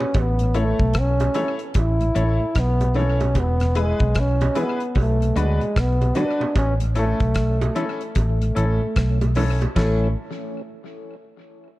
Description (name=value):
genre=roots reggae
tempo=75 BPM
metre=4/4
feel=swing 63% on 16ths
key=A major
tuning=A4 = 441 Hz
part: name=mellow trombone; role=melody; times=0.0-10.1 s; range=G#3 to E4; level=-24 LUFS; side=equal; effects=tape echo
part: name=mellow tonewheel organ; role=accompaniment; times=0.0-10.1 s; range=E2 to C#4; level=-30 LUFS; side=left 2 dB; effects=slow rotary speaker, tape echo
part: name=bongos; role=percussion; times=0.0-10.1 s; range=none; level=-32 LUFS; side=right 5 dB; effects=none
part: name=vintage muted fingered electric bass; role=bass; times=0.1-10.1 s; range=E1 to D2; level=-20 LUFS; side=equal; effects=none
part: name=damped 70s drum kit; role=drums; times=0.1-10.0 s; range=hi-hat, kick drum, ride cymbal, rim click, snare drum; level=-24 LUFS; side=equal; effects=tape echo
part: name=bright concert grand piano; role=stabs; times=0.5-10.1 s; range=C#4 to C#5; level=-31 LUFS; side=left 4 dB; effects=none
room=studio ambience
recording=echo-heavy mix, cassette tape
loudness=-18 LUFS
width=side -18 dB against mid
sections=0.0-9.8 A section; 9.8-11.8 B section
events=none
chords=0.2 A; 3.4 E; 5.0 Bm; 6.6 A